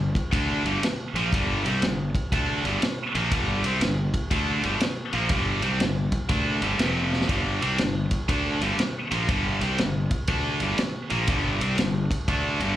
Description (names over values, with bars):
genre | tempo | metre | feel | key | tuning
blues rock power trio and southern rock | 120 BPM | 4/4 | swing 65% on 8ths | G minor | A4 = 435 Hz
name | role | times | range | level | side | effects
tight distorted guitar | riff | 0.0-12.8 s | F2 to D4 | -26 LUFS | equal | distortion
fuzz fingered electric bass | bass | 0.0-12.8 s | F1 to D2 | -28 LUFS | equal | overdrive
vintage drum kit | drums | 0.2-12.7 s | kick drum, ride cymbal, snare drum | -28 LUFS | equal | none
room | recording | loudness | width
small room ambience | live gig heard through the venue's PA, club reverb | -22 LUFS | side -12 dB against mid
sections
0.0-12.8 A section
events
drum fill 7.0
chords
0.0 Gm; 6.8 F5; 7.3 Gm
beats
0.33 0.82 | 1.32 1.82 2.32 2.82 | 3.32 3.81 4.31 4.81 | 5.31 5.80 6.30 6.80 | 7.30 7.79 8.29 8.79 | 9.29 9.79 10.28 10.78 | 11.28 11.78 12.28